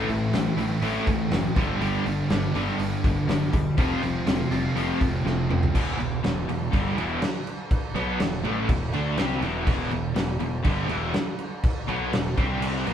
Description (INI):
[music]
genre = hard rock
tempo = 122 BPM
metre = 4/4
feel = straight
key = E phrygian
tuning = A4 = 440 Hz
[part]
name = distorted electric guitar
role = riff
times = 0.0-12.9 s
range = E2 to D4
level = -29 LUFS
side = left 6 dB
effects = distortion
[part]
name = distorted electric guitar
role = riff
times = 0.0-5.7 s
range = G2 to F4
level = -31 LUFS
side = right 1 dB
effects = overdrive
[part]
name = overdriven electric guitar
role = riff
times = 0.0-12.9 s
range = E2 to D4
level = -29 LUFS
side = right 6 dB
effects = tremolo
[part]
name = fuzz picked electric bass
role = bass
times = 0.1-12.9 s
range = E1 to D2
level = -31 LUFS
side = equal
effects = overdrive
[part]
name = big rock drum kit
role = drums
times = 0.1-12.9 s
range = crash cymbal, hi-hat, kick drum, snare drum, toms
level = -26 LUFS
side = equal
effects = none
[sound]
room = moderate stone room reverb, RT60 1.3 s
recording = band playing live in one room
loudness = -22 LUFS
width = side -9 dB against mid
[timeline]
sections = 0.0-5.7 A section; 5.7-12.9 B section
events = drum fill 5.3-5.7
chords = 0.0 Am; 1.6 G; 3.8 Fsus2; 5.7 Em; 12.4 C5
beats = 0.34 0.83 1.32 | 1.81 2.30 2.79 3.29 | 3.78 4.27 4.76 5.25 | 5.74 6.24 6.73 7.22 | 7.71 8.20 8.69 9.18 | 9.67 10.16 10.65 11.15 | 11.64 12.13 12.62